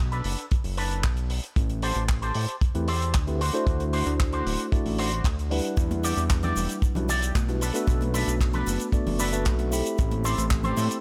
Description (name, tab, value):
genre	nu-disco, nu disco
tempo	114 BPM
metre	4/4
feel	straight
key	A dorian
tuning	A4 = 440 Hz
part	fat analog bass	bass	0.0-10.9 s	D1 to A2	-30 LUFS	equal	none
part	electric guitar with an envelope filter	riff	0.1-11.0 s	D4 to D5	-34 LUFS	equal	analog chorus
part	damped 70s drum kit	drums	0.1-11.0 s	handclaps, hi-hat, shaker	-36 LUFS	equal	studio reverb
part	kick drum	drums	0.5-10.6 s	none	-27 LUFS	equal	studio reverb
part	tine electric piano	accompaniment	2.7-11.0 s	G3 to B5	-32 LUFS	equal	phaser, sidechain pumping
part	cabasa and congas	percussion	5.8-11.0 s	none	-39 LUFS	equal	none
room	little or no reverb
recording	none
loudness	-26 LUFS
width	mono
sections	0.0-11.0 A section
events	none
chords	0.0 Bm7; 1.6 Am7; 3.4 D7; 5.8 Em7; 7.6 Bm7; 10.0 Am7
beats	0.51 1.04 | 1.56 2.09 2.62 3.14 | 3.67 4.20 4.72 5.25 | 5.78 6.30 6.83 7.35 | 7.88 8.41 8.93 9.46 | 9.99 10.51